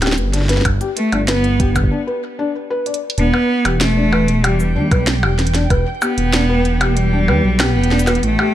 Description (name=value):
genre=IDM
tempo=95 BPM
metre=4/4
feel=straight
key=E minor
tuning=A4 = 436 Hz
part: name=felt-muted upright piano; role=arpeggios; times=0.0-8.5 s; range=D4 to D5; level=-22 LUFS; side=left 3 dB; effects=vintage 12-bit sampler grit, ping-pong delay
part: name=dark detuned saw bass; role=bass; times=0.0-8.4 s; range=D1 to E2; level=-17 LUFS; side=equal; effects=none
part: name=glitchy drum kit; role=drums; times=0.0-8.5 s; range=cabasa, hi-hat, percussion blips, snare drum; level=-20 LUFS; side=equal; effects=studio reverb
part: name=electronic kick drum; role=drums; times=0.7-5.8 s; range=none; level=-17 LUFS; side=equal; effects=studio reverb
part: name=clear cello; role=melody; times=1.0-8.5 s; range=G3 to B3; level=-19 LUFS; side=equal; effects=ping-pong delay
part: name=backwards swelling texture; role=texture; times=4.6-8.5 s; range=G5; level=-29 LUFS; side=right 2 dB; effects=built-in reverb
room=light reverb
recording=none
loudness=-14 LUFS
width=side -12 dB against mid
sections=0.0-3.2 A section; 3.2-8.5 B section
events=break 1.9-3.2; drum fill 2.9-3.2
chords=0.0 G; 3.2 Em